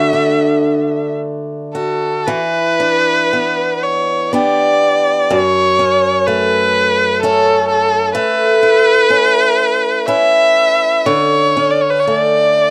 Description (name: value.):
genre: celtic folk.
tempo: 54-64 BPM.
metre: 3/4.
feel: rubato.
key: unclear.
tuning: A4 = 444 Hz.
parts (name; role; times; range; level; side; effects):
clear erhu; melody; 0.0-12.7 s; A4 to E5; -16 LUFS; equal; none.
picked swing-style acoustic guitar; accompaniment; 0.0-12.7 s; F#2 to B4; -18 LUFS; equal; none.
room: light reverb.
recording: dry, close 1970s-style studio recording.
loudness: -14 LUFS.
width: mono.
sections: 0.0-2.3 A section; 2.3-12.7 B section.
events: none.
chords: 0.0 Dadd9; 2.3 Em7; 5.3 F#m; 8.2 Aadd9; 11.1 Dmaj7(no3).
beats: 0.13 1.19 | 2.27 3.33 4.34 | 5.31 6.27 7.22 | 8.16 9.10 10.07 | 11.07 12.07.